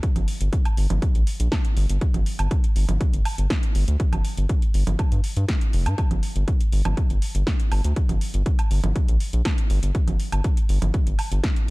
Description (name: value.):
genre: melodic techno.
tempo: 121 BPM.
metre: 4/4.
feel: straight.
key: G minor.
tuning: A4 = 440 Hz.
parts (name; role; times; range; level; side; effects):
deep house drum kit; drums; 0.0-11.7 s; congas, hi-hat, snare drum, woodblock; -30 LUFS; right 2 dB; overdrive.
electronic kick drum; drums; 0.0-11.5 s; none; -22 LUFS; equal; none.
round analog bass; bass; 0.2-11.4 s; F1 to G2; -21 LUFS; equal; sidechain pumping.
room: little or no reverb.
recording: dark, warm production.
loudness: -20 LUFS.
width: side -22 dB against mid.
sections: 0.0-11.7 A section.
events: none.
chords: none.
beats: | 0.03 0.53 1.02 1.52 | 2.01 2.51 3.01 3.50 | 4.00 4.49 4.99 5.49 | 5.98 6.48 6.97 7.47 | 7.96 8.46 8.96 9.45 | 9.95 10.44 10.94 11.44.